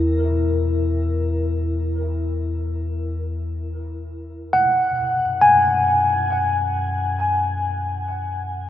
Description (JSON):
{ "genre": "ambient", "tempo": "free time", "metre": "none", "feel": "none", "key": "unclear", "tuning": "A4 = 440 Hz", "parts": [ { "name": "tine electric piano", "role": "arpeggios", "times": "0.0-8.7 s", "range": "E4 to G#5", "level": "-20 LUFS", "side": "left 1 dB", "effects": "wide subtle chorus, diffuse ambient delay, shimmer reverb" }, { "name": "warm sub bass", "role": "bass", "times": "0.0-8.7 s", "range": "E2 to F#2", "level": "-24 LUFS", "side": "left 2 dB", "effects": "none" } ], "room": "wet huge ambient reverb, RT60 7.6 s", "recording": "worn, warbling old tape, cassette tape, warbly pitch drift", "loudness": "-18 LUFS", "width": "side -11 dB against mid", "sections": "0.0-8.7 A section", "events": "fade-out on sub bass 0.0-8.7", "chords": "0.0 F#7/E (rootless); 4.7 F#sus2", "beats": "free time" }